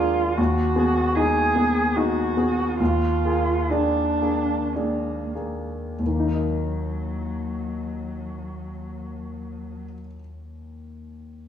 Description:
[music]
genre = classical, slow romantic movement for piano trio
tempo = 46-78 BPM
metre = 3/4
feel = rubato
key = Eb minor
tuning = A4 = 439 Hz
[part]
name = muted cello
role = second line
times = 0.0-9.9 s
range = Gb3 to Ab4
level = -26 LUFS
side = right 3 dB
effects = none
[part]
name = warm concert grand piano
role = accompaniment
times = 0.0-11.5 s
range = Eb2 to Eb5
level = -24 LUFS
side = left 2 dB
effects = none
[sound]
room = wet recital hall reverb, RT60 1.5 s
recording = none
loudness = -21 LUFS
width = side -9 dB against mid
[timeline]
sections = 0.0-6.0 A section; 6.0-9.5 B section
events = slowing down 0.0-6.0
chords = 0.4 Abm/Eb; 2.8 Bb7/Eb; 6.0 Ebm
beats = | 0.38 1.16 1.96 | 2.80 3.71 4.76 | 5.99 7.20 8.33

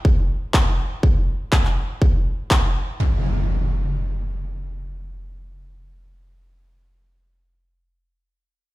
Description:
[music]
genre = progressive house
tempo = 122 BPM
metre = 4/4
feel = straight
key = none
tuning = none
[part]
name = electronic kick drum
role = drums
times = 0.0-2.6 s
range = none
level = -17 LUFS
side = equal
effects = none
[part]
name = electronic handclaps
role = drums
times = 0.5-2.6 s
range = none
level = -25 LUFS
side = equal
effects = sidechain pumping on hats
[part]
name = impact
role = sound effects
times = 3.0-7.9 s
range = none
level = -23 LUFS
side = equal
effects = none
[sound]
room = light reverb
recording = played on a big sound system in a bare room, large studio reverb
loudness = -18 LUFS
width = side -19 dB against mid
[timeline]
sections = 0.0-3.0 A section; 3.0-6.9 B section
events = none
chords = none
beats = 0.05 0.54 | 1.03 1.52 2.02 2.51 | 3.00 3.49 3.98 4.47 | 4.97 5.46 5.95 6.44

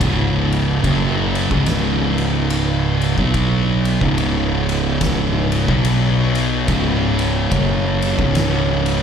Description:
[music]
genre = stoner and doom metal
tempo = 72 BPM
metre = 4/4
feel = swing 61% on 8ths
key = unclear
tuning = A4 = 440 Hz
[part]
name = deep rumbling drone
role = sustained chords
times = 1.5-9.0 s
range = C#3 to C#5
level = -30 LUFS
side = right 2 dB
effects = built-in reverb
[part]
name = thick fuzz guitar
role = riff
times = 0.0-9.0 s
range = C#2 to B3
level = -21 LUFS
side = left 9 dB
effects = distortion
[part]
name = thick fuzz guitar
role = riff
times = 0.0-9.0 s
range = C#2 to B3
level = -20 LUFS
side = right 9 dB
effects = distortion
[part]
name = fuzz fingered electric bass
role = bass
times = 0.0-9.0 s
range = C#1 to B1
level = -22 LUFS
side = left 1 dB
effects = overdrive, tube saturation
[part]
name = oversized low-tuned drum kit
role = drums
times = 0.0-9.0 s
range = kick drum, ride cymbal, snare drum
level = -24 LUFS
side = equal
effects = none
[sound]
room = studio ambience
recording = live gig heard through the venue's PA, club reverb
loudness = -15 LUFS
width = side -7 dB against mid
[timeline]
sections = 0.0-9.0 A section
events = none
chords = 0.0 C#5; 3.1 B5; 4.0 C#5; 5.6 B5; 6.7 C#5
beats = | 0.01 0.84 1.68 2.51 | 3.35 4.18 5.01 5.85 | 6.68 7.51 8.35

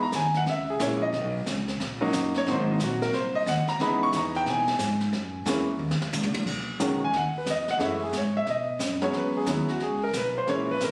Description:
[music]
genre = jazz piano trio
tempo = 180 BPM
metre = 4/4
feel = swing 65% on 8ths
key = B major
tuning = A4 = 440 Hz
[part]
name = clear baby grand piano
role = melody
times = 0.0-10.9 s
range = D#3 to C#6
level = -28 LUFS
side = equal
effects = none
[part]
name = upright bass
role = bass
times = 0.0-10.9 s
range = F#1 to B2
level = -33 LUFS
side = equal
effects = none
[part]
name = jazz brush drum kit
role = drums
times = 0.1-10.9 s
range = brushed snare drum, crash cymbal, hi-hat, kick drum, snare drum, toms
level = -36 LUFS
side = equal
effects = none
[sound]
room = light reverb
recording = recorded on a phone in the room, studio reverb, compression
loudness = -27 LUFS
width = mono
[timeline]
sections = 0.0-6.5 A section; 6.5-10.9 B section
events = grand piano solo 0.0-6.5; drum fill 5.8-6.5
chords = 0.5 A#m7b5; 1.1 Bmaj9; 2.5 G#7; 3.8 C#m7; 5.1 F#7(no3); 6.5 B6; 7.8 F#m9; 8.5 B; 9.1 E6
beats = 0.13 0.46 0.80 | 1.13 1.46 1.80 2.13 | 2.46 2.80 3.13 3.46 | 3.80 4.13 4.46 4.80 | 5.13 5.46 5.80 6.13 | 6.46 6.80 7.13 7.46 | 7.80 8.13 8.47 8.80 | 9.14 9.47 9.81 10.14 | 10.48 10.81

